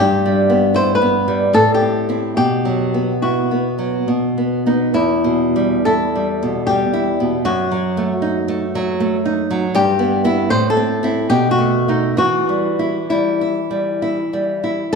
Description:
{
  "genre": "romantic duo for nylon-string guitar and classical guitar",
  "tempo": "62-81 BPM",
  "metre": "3/4",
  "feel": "rubato",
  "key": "E minor",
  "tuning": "A4 = 440 Hz",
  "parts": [
    { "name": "flamenco guitar", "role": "melody", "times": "0.0-15.0 s", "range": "E4 to C5", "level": "-18 LUFS", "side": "left 3 dB", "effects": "none" },
    { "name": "nylon-string guitar", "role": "accompaniment", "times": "0.0-14.9 s", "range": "E2 to E4", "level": "-17 LUFS", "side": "right 1 dB", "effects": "none" }
  ],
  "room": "wet recital hall reverb, RT60 1.4 s",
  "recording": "lossy compression artefacts",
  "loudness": "-15 LUFS",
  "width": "side -4 dB against mid",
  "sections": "0.0-14.9 A section",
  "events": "none",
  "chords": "0.0 Em/G; 1.5 Am7; 2.4 Bsus4; 4.1 B; 4.9 Em; 7.4 D#dim/F#; 9.8 Em/G; 10.5 Am; 11.3 B7; 12.2 Em",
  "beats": "| 0.00 0.76 1.55 | 2.38 3.24 4.08 | 4.94 5.86 6.67 | 7.45 8.23 9.00 | 9.75 10.52 11.32 | 12.18 13.09 14.02 | 14.93"
}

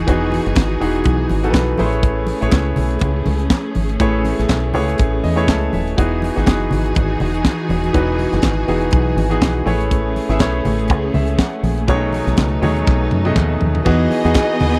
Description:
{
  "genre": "disco",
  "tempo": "122 BPM",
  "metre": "4/4",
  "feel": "swing 56% on 16ths",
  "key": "E major",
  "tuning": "A4 = 440 Hz",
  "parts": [
    { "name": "bright grand piano", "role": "accompaniment", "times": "0.0-14.8 s", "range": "B2 to A5", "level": "-22 LUFS", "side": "equal", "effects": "none" },
    { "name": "clear studio string section", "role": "sustained chords", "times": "0.0-14.8 s", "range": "E3 to G#4", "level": "-27 LUFS", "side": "equal", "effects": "none" },
    { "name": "deep dub fingered electric bass", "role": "bass", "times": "0.0-14.8 s", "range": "D#1 to F#2", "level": "-22 LUFS", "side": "equal", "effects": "none" },
    { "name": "tight funk drum kit", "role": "drums", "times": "0.1-14.8 s", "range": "crash cymbal, hi-hat, kick drum, snare drum, toms", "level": "-19 LUFS", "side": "equal", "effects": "none" },
    { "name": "congas", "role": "percussion", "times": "0.3-14.7 s", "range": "none", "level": "-27 LUFS", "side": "equal", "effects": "none" },
    { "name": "group handclap", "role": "percussion", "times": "0.6-14.5 s", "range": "none", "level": "-33 LUFS", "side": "equal", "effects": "none" },
    { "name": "warm studio violin section", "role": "second line", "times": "13.8-14.8 s", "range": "B3 to D#5", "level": "-20 LUFS", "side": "equal", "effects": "none" }
  ],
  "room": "little or no reverb",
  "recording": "dry, close 1970s-style studio recording",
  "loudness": "-17 LUFS",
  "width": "mono",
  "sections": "0.0-13.9 A section",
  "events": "grand piano fill 5.0-6.0; drum fill 12.9-13.9",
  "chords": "0.0 Emaj9; 1.8 Amaj7; 6.0 Emaj9; 9.7 Amaj7; 11.9 B13; 13.9 Emaj9",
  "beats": "| 0.07 0.56 1.05 1.54 | 2.03 2.52 3.02 3.51 | 4.00 4.49 4.99 5.48 | 5.97 6.46 6.96 7.45 | 7.94 8.44 8.93 9.42 | 9.91 10.41 10.90 11.39 | 11.89 12.38 12.87 13.37 | 13.86 14.35"
}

